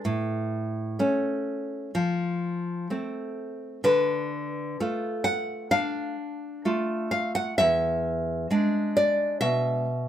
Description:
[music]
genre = romantic piece for solo classical guitar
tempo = 64 BPM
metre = 4/4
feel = rubato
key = unclear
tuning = A4 = 441 Hz
[part]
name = nylon-string guitar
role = solo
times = 0.0-10.1 s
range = E2 to F#5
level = -25 LUFS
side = equal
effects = none
[sound]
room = moderate studio reverb, RT60 0.8 s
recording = band playing live in one room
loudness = -24 LUFS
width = side -10 dB against mid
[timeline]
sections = 0.0-10.1 A section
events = none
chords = 0.0 A; 1.9 F; 3.8 Bm7b5/D; 7.6 E7

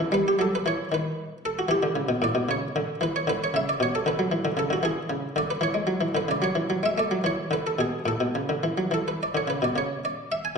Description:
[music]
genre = classical, baroque-style suite movement for harpsichord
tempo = 76 BPM (dotted quarters)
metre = 6/8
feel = rubato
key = A major from 3.3 s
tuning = A4 = 442 Hz
[part]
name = buff-stop harpsichord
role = solo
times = 0.0-10.6 s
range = A2 to G#5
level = -23 LUFS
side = equal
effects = none
[sound]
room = wet recital hall reverb, RT60 1.3 s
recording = dark, warm production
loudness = -23 LUFS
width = side -5 dB against mid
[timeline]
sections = 0.0-9.7 A section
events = none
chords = 0.1 Em; 0.9 N.C.; 1.7 Em; 3.3 Bm; 4.8 E7; 6.4 F#m; 7.2 E5; 8.1 A; 9.7 A/C# (rootless)

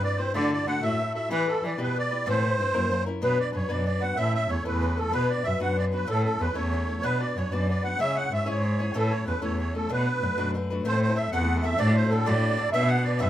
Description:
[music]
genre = celtic folk, Celtic jig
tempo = 126 BPM (dotted quarters)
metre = 6/8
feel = straight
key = B dorian from 3.2 s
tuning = A4 = 441 Hz
[part]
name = musette accordion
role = melody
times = 0.0-13.3 s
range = A4 to F#5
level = -27 LUFS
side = right 2 dB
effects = none
[part]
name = picked old ladder-braced acoustic guitar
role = accompaniment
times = 0.0-13.3 s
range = A2 to C#5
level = -31 LUFS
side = left 4 dB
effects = none
[part]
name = clear cello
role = bass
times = 0.3-13.3 s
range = E2 to E3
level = -27 LUFS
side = equal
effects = none
[sound]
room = moderate small room ambience, RT60 0.5 s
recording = band playing live in one room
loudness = -23 LUFS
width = side -12 dB against mid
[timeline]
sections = 0.0-3.2 A section; 3.2-10.8 B section; 10.8-13.3 C section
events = none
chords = 0.3 Dadd9; 1.3 Em; 2.3 Amadd9; 2.7 F#7; 3.2 Bm; 4.2 A; 5.1 Bm; 6.1 A; 7.0 Bm; 8.0 C#m; 8.9 A; 9.9 Bm7; 10.8 Am; 11.8 D/A; 12.7 Bm

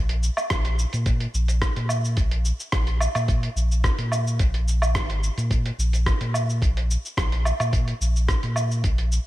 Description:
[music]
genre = organic downtempo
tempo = 108 BPM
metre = 4/4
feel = straight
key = unclear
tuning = A4 = 439 Hz
[part]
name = warm sub bass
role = bass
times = 0.0-9.2 s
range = Ab1 to Bb2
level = -23 LUFS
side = equal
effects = sidechain pumping
[part]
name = dusty soul sampler-style drum kit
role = drums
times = 0.1-9.2 s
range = cabasa, hi-hat, rim click, woodblock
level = -28 LUFS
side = right 1 dB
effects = none
[part]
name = electronic kick drum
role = drums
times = 0.5-9.0 s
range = none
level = -24 LUFS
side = equal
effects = none
[sound]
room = little or no reverb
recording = none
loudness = -21 LUFS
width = side -16 dB against mid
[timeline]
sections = 0.0-9.3 A section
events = none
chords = none

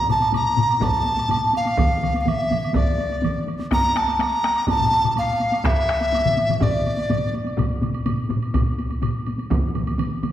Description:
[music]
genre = japanese traditional, taiko drum ensemble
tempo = 124 BPM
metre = 4/4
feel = straight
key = A miyako bushi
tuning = A4 = 440 Hz
[part]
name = mellow hollow large dizi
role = melody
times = 0.0-7.3 s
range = D5 to Bb5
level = -21 LUFS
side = equal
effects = none
[part]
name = taiko ensemble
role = percussion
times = 0.1-10.3 s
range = none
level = -28 LUFS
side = equal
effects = none
[part]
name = taiko ensemble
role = percussion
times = 0.1-9.1 s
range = none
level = -26 LUFS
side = left 2 dB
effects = none
[part]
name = woodblock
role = percussion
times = 0.1-10.3 s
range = none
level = -36 LUFS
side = right 3 dB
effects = none
[part]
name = taiko ensemble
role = percussion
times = 0.8-9.6 s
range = none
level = -25 LUFS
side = right 1 dB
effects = none
[part]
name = taiko ensemble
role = percussion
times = 1.8-10.3 s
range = none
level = -27 LUFS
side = right 2 dB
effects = none
[sound]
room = wet recital hall reverb, RT60 1.7 s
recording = recorded in a church or concert hall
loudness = -19 LUFS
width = side -12 dB against mid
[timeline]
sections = 0.0-10.3 A section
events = none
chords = none

